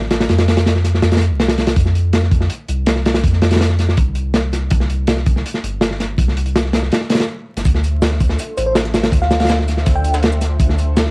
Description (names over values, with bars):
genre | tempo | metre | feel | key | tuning
drum and bass, jungle | 163 BPM | 4/4 | straight | D minor | A4 = 441 Hz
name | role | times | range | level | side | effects
soft dub sub bass | bass | 0.0-11.1 s | G1 to F2 | -17 LUFS | equal | tube saturation
crunchy breakbeat drum kit | drums | 0.0-11.1 s | hi-hat, kick drum, snare drum | -16 LUFS | equal | cassette tape
breakbeat sampler-style drum kit | drums | 7.7-11.1 s | hi-hat, shaker, snare drum | -30 LUFS | equal | high-pass filter on perc, cassette tape, high-pass filter on snare, high-pass filter on hats
bell-like FM electric piano | melody | 8.6-10.2 s | C5 to G5 | -22 LUFS | equal | chorus, vintage 12-bit sampler grit, cassette tape, dub echo
room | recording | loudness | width
light reverb | home recording on cassette, vinyl crackle | -13 LUFS | side -30 dB against mid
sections
0.0-11.1 A section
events
none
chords
0.3 F5; 4.0 C5; 7.7 Dm9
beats
| 0.29 0.66 1.03 1.40 | 1.77 2.13 2.50 2.87 | 3.24 3.61 3.98 4.34 | 4.71 5.08 5.45 5.82 | 6.18 6.55 6.92 7.29 | 7.66 8.02 8.39 8.76 | 9.13 9.50 9.86 10.23 | 10.60 10.97